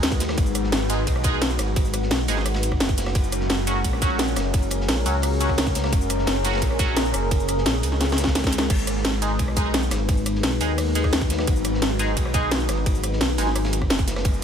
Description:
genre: dark technical drum and bass.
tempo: 173 BPM.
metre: 4/4.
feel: straight.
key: G# minor.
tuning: A4 = 439 Hz.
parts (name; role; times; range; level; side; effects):
deep dark ambient pad; sustained chords; 0.0-14.4 s; G#3 to B4; -27 LUFS; left 2 dB; chorus, built-in reverb, sidechain pumping.
wide detuned saw bass; bass; 0.0-14.4 s; F#1 to D#2; -25 LUFS; equal; chorus, overdrive, sidechain pumping.
crunchy breakbeat drum kit; drums; 0.0-14.3 s; hi-hat, ride cymbal, snare drum; -34 LUFS; equal; high-pass filter on cymbals, small room ambience, high-pass filter on hats, high-pass filter on snare, high-pass filter on room.
drum and bass drum kit; drums; 0.0-14.4 s; crash cymbal, hi-hat, ride cymbal, rim click, shaker, snare drum; -26 LUFS; equal; overdrive, small room ambience.
electronic kick drum; drums; 0.1-14.3 s; none; -23 LUFS; equal; small room ambience.
band-passed chord stab; stabs; 0.9-6.9, 9.2-13.5 s; F#3 to G#4; -30 LUFS; right 3 dB; phaser, wide subtle chorus, dub echo.
room: studio ambience.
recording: none.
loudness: -20 LUFS.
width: side -8 dB against mid.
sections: 0.0-14.4 A section.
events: drum fill 8.0-8.7.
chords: 0.0 G#m7; 3.2 F#add9; 8.7 G#m7.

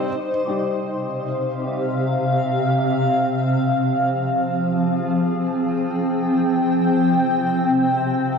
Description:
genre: ambient.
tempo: free time.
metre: none.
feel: none.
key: unclear.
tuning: A4 = 440 Hz.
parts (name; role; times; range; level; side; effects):
granular cloud pad; sustained chords; 0.0-8.4 s; C3 to G5; -18 LUFS; equal; built-in reverb, shimmer reverb.
room: wet lush hall reverb, RT60 3.1 s.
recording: worn, warbling old tape, cassette tape, warbly pitch drift.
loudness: -18 LUFS.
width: side -5 dB against mid.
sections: 0.1-8.4 A section.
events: none.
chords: 0.1 Csus4; 3.2 Fmadd9; 6.3 Csus4.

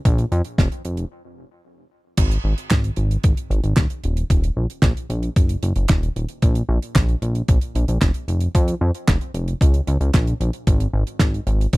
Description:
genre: italo disco.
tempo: 113 BPM.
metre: 4/4.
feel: straight.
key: Bb minor.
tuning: A4 = 440 Hz.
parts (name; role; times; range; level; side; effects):
chorused synth bass; bass; 0.1-11.8 s; Eb1 to F2; -20 LUFS; equal; none.
damped 70s drum kit; drums; 0.1-11.8 s; crash cymbal, handclaps, hi-hat, snare drum; -22 LUFS; right 1 dB; small room reverb.
electronic kick drum; drums; 0.1-11.8 s; none; -18 LUFS; equal; small room reverb.
room: little or no reverb.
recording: dry, close 1970s-style studio recording.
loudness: -18 LUFS.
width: side -22 dB against mid.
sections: 0.0-2.2 A section; 2.2-11.8 B section.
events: stop 1.1-2.2.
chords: none.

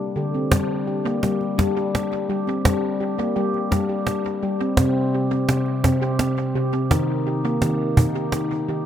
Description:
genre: world meditative, meditative tuned percussion.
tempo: 56 BPM (dotted quarters).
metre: 6/8.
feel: straight.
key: G minor.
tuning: A4 = 440 Hz.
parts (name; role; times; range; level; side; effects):
handpan; arpeggios; 0.0-8.9 s; C3 to G4; -21 LUFS; left 1 dB; none.
cajon; percussion; 0.5-8.5 s; none; -21 LUFS; right 2 dB; dub echo.
room: moderate spring reverb, RT60 2.0 s.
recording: echo-heavy mix.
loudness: -19 LUFS.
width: side -10 dB against mid.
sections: 0.5-8.9 A section.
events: none.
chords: 0.0 G5; 4.8 C5; 6.9 Eb.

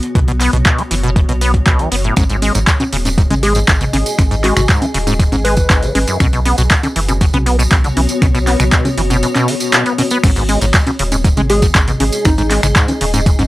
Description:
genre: acid house.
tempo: 119 BPM.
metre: 4/4.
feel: straight.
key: G# minor.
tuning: A4 = 441 Hz.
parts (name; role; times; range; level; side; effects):
booming analog drum machine; drums; 0.0-13.5 s; congas, crash cymbal, finger snaps, handclaps, hi-hat, toms; -17 LUFS; equal; none.
granular cloud pad; texture; 0.0-13.5 s; B3 to G#5; -23 LUFS; left 2 dB; built-in reverb, sidechain pumping.
acid bass, saw; riff; 0.2-13.4 s; F#2 to B3; -18 LUFS; equal; tube saturation, analog chorus, analog delay.
warm sub bass; bass; 0.2-13.5 s; D#1 to B1; -17 LUFS; equal; tube saturation, sidechain pumping.
electronic kick drum; drums; 0.2-13.4 s; none; -13 LUFS; equal; none.
tambourine; percussion; 2.2-13.5 s; none; -26 LUFS; right 2 dB; none.
soft struck synth lead; melody; 3.4-6.2, 11.5-12.5 s; D#4 to B4; -20 LUFS; equal; chorus, tape echo.
room: light reverb.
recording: dry, gritty hardware recording.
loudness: -11 LUFS.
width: side -17 dB against mid.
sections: 0.0-10.2 A section; 10.2-13.5 B section.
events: fade-in on ambient pad 0.0-10.2; band accent 9.7; drop 10.2-13.5.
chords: 0.0 B5; 2.2 G#m7; 6.2 B5; 10.2 G#m7.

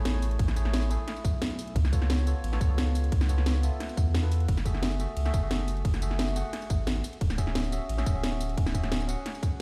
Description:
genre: liquid drum and bass.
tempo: 176 BPM.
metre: 4/4.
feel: straight.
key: unclear.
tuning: A4 = 440 Hz.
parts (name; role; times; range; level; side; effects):
barky tine electric piano; accompaniment; 0.0-9.6 s; A3 to F#5; -39 LUFS; equal; subtle chorus, digital delay.
warm sub bass; bass; 0.0-9.2 s; D1 to E2; -30 LUFS; equal; none.
drum and bass drum kit; drums; 0.1-9.5 s; hi-hat, ride cymbal, snare drum, tambourine; -36 LUFS; equal; overdrive.
electronic kick drum; drums; 0.4-9.5 s; none; -29 LUFS; equal; overdrive.
room: light reverb, digital ambience.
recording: played on a big sound system in a bare room, stone room reverb.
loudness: -28 LUFS.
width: mono.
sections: 0.0-9.6 A section.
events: none.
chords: 0.0 Amaj7; 1.8 C#7alt; 4.5 F#m9; 7.0 Dmaj9#11.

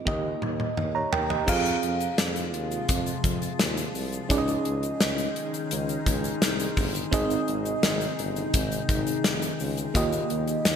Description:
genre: 1980s-style pop.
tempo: 85 BPM.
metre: 4/4.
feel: straight.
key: unclear.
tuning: A4 = 440 Hz.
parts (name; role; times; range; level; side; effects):
FM electric piano with auto-pan; accompaniment; 0.0-10.8 s; Bb3 to Bb5; -29 LUFS; right 3 dB; none.
warm tuba; bass; 0.1-10.8 s; F1 to F2; -32 LUFS; equal; none.
gated 80s drum kit; drums; 0.1-10.8 s; crash cymbal, hi-hat, kick drum, snare drum, toms; -27 LUFS; left 1 dB; none.
glassy FM pad; sustained chords; 2.1-10.8 s; C3 to Ab4; -32 LUFS; left 4 dB; ensemble chorus, built-in reverb.
egg shaker; percussion; 1.5-10.8 s; none; -43 LUFS; left 10 dB; none.
room: moderate lush hall reverb, RT60 2.4 s.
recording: bright 1980s-style digital production.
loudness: -24 LUFS.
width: side -8 dB against mid.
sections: 0.0-1.5 A section; 1.5-10.8 B section.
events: drum fill 0.1-1.5.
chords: 0.1 Eb; 1.5 Fm; 4.3 Dbsus2; 7.1 Ab; 9.9 Ebadd9.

